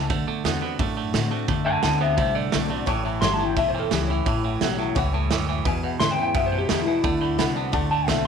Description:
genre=rockabilly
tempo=173 BPM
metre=4/4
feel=straight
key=A mixolydian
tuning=A4 = 442 Hz
part: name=electric guitar through a small old amp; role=melody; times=0.0-8.2 s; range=E4 to C6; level=-25 LUFS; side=left 2 dB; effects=spring reverb, tape echo
part: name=picked steel-string acoustic guitar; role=accompaniment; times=0.0-8.3 s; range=E2 to F#4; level=-29 LUFS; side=left 11 dB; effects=none
part: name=twangy electric guitar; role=riff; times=0.0-8.2 s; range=E2 to B3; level=-29 LUFS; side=right 12 dB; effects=none
part: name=upright bass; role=bass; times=0.0-8.3 s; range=G1 to A2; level=-28 LUFS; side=left 1 dB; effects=none
part: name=raw garage drum kit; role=drums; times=0.1-8.2 s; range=hi-hat, kick drum, snare drum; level=-27 LUFS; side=right 4 dB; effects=none
part: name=honky-tonk upright piano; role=accompaniment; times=2.9-8.3 s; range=B4 to C6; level=-32 LUFS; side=left 14 dB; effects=none
room=small room ambience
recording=1960s-style stereo with parts hard left and right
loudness=-21 LUFS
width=side -6 dB against mid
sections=0.0-8.3 A section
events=clean electric guitar solo 0.0-8.3; honky-tonk piano fill 5.0-5.7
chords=0.1 D7; 2.9 A7; 5.7 E7; 7.0 D7

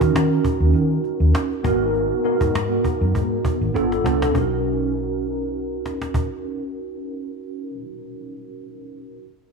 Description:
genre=polished 1980s jazz-funk pop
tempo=100 BPM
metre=4/4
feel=swing 54% on 16ths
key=B major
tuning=A4 = 441 Hz
part: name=mellow tine electric piano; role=accompaniment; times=0.0-9.3 s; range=B3 to A#4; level=-22 LUFS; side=right 2 dB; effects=medium stereo tremolo, analog chorus
part: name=vintage muted fingered electric bass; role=bass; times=0.0-7.7 s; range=G1 to D#3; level=-22 LUFS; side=equal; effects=none
part: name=cajon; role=drums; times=0.0-6.3 s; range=none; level=-26 LUFS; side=equal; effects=none
room=light reverb, small room reverb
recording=small room ambience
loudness=-19 LUFS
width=side -4 dB against mid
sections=0.0-4.3 A section; 4.3-6.7 B section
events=drum fill 3.7-4.3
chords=0.0 D#m7; 1.6 G#m9; 3.7 G9; 4.3 Bmaj9

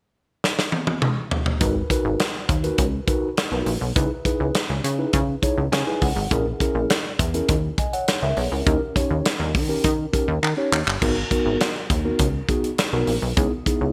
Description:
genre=early-eighties boogie funk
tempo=102 BPM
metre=4/4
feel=straight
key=G# minor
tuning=A4 = 440 Hz
part: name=modern studio drum kit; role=drums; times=0.4-13.8 s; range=crash cymbal, handclaps, hi-hat, kick drum, snare drum, toms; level=-25 LUFS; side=equal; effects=gated reverb
part: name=mellow tine electric piano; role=accompaniment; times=1.6-13.9 s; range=B3 to G#5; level=-27 LUFS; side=equal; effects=none
part: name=plucky analog bass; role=bass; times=1.6-13.9 s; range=G1 to D#3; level=-26 LUFS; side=equal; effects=none
room=moderate lush hall reverb, RT60 1.7 s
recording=bright 1980s-style digital production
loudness=-22 LUFS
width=mono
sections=0.0-1.6 A section; 1.6-13.9 B section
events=drum fill 0.4-1.6, 10.4-11.0; tine electric piano fill 5.4-6.3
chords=0.0 N.C.; 1.6 G#m9; 4.0 C#m9; 6.3 A#m7b5; 8.7 D#7; 11.0 G#m9; 13.4 C#m9

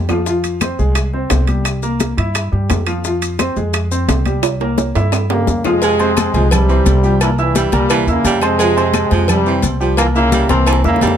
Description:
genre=latin, salsa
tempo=173 BPM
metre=4/4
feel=straight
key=F harmonic minor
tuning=A4 = 440 Hz
part: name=clear concert grand piano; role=accompaniment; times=0.0-11.1 s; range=F3 to E6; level=-20 LUFS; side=equal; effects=none
part: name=upright bass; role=bass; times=0.0-11.2 s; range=C2 to G2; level=-17 LUFS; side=equal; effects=none
part: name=bongos and cowbell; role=percussion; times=0.1-11.2 s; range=none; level=-24 LUFS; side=left 6 dB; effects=none
part: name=claves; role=percussion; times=0.1-10.8 s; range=none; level=-27 LUFS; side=left 7 dB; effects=none
part: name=congas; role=percussion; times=0.1-11.2 s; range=none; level=-22 LUFS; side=left 4 dB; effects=none
part: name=maracas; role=percussion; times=0.1-11.2 s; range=none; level=-29 LUFS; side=left 9 dB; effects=none
part: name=timbales and agogo bells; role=percussion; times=0.1-11.2 s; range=none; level=-23 LUFS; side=right 6 dB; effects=none
part: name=bright trombone section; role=melody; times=5.3-11.2 s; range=G2 to C4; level=-16 LUFS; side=equal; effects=none
part: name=warm baritone saxophone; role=second line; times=5.8-11.2 s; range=E3 to Ab3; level=-20 LUFS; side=right 6 dB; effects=none
room=light reverb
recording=close, detailed microphones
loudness=-13 LUFS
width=side -9 dB against mid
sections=0.0-5.8 A section; 5.8-11.2 B section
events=drum fill 0.0, 4.4-5.8, 10.5-11.2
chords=0.3 Fmadd9; 1.7 C7; 3.0 Fmadd9; 4.4 C7; 5.8 Fmadd9; 7.2 C7; 8.6 Fmadd9; 10.0 C7

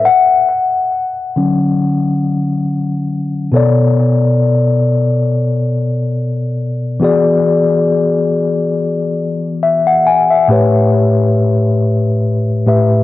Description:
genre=R&B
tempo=69 BPM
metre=4/4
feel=swing 54% on 16ths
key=B minor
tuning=A4 = 441 Hz
part: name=mellow tine electric piano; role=solo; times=0.0-13.0 s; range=A2 to G#5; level=-11 LUFS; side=left 2 dB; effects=medium stereo tremolo, cassette tape, analog delay
room=wet small room reverb, RT60 0.6 s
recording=home recording on cassette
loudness=-11 LUFS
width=side -15 dB against mid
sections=0.0-3.5 A section; 3.5-13.0 B section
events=tine electric piano solo 0.0-3.5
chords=0.1 Dmaj7; 3.5 Bm7; 7.0 E7; 10.5 A7

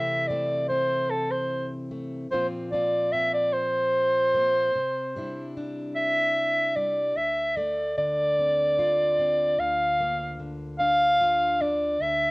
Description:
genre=acoustic folk duo or small band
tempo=50 BPM (dotted quarters)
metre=6/8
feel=straight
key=unclear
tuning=A4 = 442 Hz
part: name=dark soprano saxophone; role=melody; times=0.0-12.3 s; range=A4 to F5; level=-22 LUFS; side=equal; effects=cassette tape
part: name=fingerpicked plugged-in steel-string acoustic guitar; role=accompaniment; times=0.0-12.3 s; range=D2 to F4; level=-34 LUFS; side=left 1 dB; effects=cassette tape
room=light reverb, small room reverb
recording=home recording on cassette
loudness=-22 LUFS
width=side -27 dB against mid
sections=0.0-7.2 A section; 7.2-12.3 B section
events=soprano saxophone solo 0.0-7.2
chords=0.0 C6; 2.3 Bbsus2; 4.7 Cadd9; 7.2 Dm7; 9.6 Bb/D

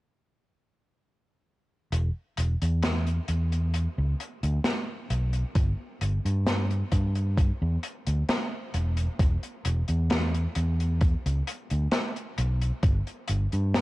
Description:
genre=vaporwave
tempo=66 BPM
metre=4/4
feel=straight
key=unclear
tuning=A4 = 440 Hz
part: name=fingered electric bass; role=bass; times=1.9-13.8 s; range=E1 to G2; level=-25 LUFS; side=equal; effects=none
part: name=open jazz drum kit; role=drums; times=1.9-13.8 s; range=hi-hat, snare drum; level=-32 LUFS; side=equal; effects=gated reverb
part: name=electronic kick drum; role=drums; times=5.6-13.0 s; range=none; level=-23 LUFS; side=equal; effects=overdrive
room=little or no reverb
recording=cassette tape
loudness=-25 LUFS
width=side -19 dB against mid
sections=1.9-9.2 A section; 9.2-13.8 B section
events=none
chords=none

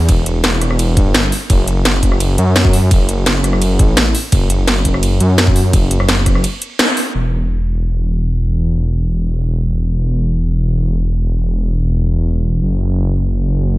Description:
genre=liquid drum and bass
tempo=170 BPM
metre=4/4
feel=straight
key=E minor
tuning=A4 = 440 Hz
part: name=dark detuned saw bass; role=bass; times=0.0-13.8 s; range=E1 to F#2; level=-14 LUFS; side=equal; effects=none
part: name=drum and bass drum kit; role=drums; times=0.1-7.0 s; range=hi-hat, ride cymbal, rim click, snare drum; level=-17 LUFS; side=equal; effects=low-pass filter on hats, low-pass filter on snare, low-pass filter on cymbals, low-pass filter on room
part: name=electronic kick drum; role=drums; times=0.1-6.3 s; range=none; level=-13 LUFS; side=equal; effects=none
room=little or no reverb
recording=none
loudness=-12 LUFS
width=side -17 dB against mid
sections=0.0-7.1 A section; 7.1-13.8 B section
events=drop 0.0-7.1; break 6.4-7.1; band accent 6.8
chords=none

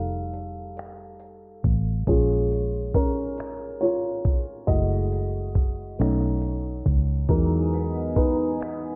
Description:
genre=slow six-eight R&B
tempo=46 BPM (dotted quarters)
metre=6/8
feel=straight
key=unclear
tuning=A4 = 441 Hz
part: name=dark baby grand piano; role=accompaniment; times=0.0-9.0 s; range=F#3 to F5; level=-29 LUFS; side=equal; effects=none
part: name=vintage muted fingered electric bass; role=bass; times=0.0-9.0 s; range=F1 to E2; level=-28 LUFS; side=equal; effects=none
part: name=dusty soul sampler-style drum kit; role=drums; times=0.3-8.8 s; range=finger snaps, hi-hat, kick drum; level=-26 LUFS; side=equal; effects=none
part: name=semi-hollow electric guitar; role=second line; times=7.3-9.0 s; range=E3 to D#4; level=-35 LUFS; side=equal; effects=ensemble chorus, slapback echo
part: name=chorused pulse-width pad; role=sustained chords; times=7.3-9.0 s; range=B3 to D#6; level=-35 LUFS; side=equal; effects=none
room=light reverb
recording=low-pass filter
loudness=-25 LUFS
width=mono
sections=0.0-9.0 A section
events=grand piano solo 0.0-9.0; filter sweep 0.0-9.0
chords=0.0 F7; 2.1 A#m7; 4.7 F#m7; 6.0 B7; 7.3 Emaj7

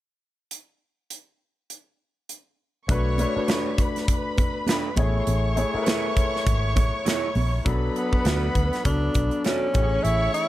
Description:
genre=lush 1970s-style soul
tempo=100 BPM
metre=4/4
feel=swing 58% on 16ths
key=unclear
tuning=A4 = 440 Hz
part: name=modern studio drum kit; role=drums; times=0.5-10.5 s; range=hi-hat, kick drum, snare drum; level=-25 LUFS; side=equal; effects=none
part: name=warm studio violin section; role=second line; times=2.9-10.5 s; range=B4 to C#6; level=-31 LUFS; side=equal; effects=none
part: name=warm grand piano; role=accompaniment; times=2.9-10.5 s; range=E3 to C#5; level=-28 LUFS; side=left 3 dB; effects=none
part: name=vintage muted fingered electric bass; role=bass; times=2.9-10.3 s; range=G#1 to D2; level=-24 LUFS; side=equal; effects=none
part: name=congas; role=percussion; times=2.9-7.5 s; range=none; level=-33 LUFS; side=right 3 dB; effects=none
part: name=electric guitar through a small old amp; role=riff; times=3.5-9.7 s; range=D4 to D5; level=-32 LUFS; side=right 6 dB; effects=none
part: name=breathy tenor saxophone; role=melody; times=8.0-10.5 s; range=B3 to E4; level=-26 LUFS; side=equal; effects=none
room=light reverb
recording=none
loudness=-21 LUFS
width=side -15 dB against mid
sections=0.5-2.9 A section; 2.9-7.7 B section; 7.7-10.5 C section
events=none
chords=0.5 N.C.; 2.9 Bm7; 5.0 Amaj7; 7.7 Bm7; 9.8 Amaj7

